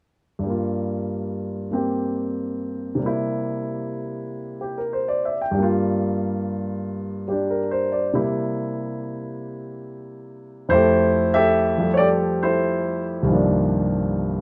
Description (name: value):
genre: solo jazz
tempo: 94 BPM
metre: 4/4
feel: swing 69% on 8ths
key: F major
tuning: A4 = 440 Hz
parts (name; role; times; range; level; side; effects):
- warm concert grand piano; solo; 0.4-14.4 s; C2 to G5; -23 LUFS; equal; none
room: light reverb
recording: close, detailed microphones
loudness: -23 LUFS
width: mono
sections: 0.4-10.7 A section; 10.7-14.4 B section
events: none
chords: 0.4 Gm7; 3.0 C7; 5.6 Gm7; 8.1 C7; 10.7 Fmaj9; 13.3 Cm11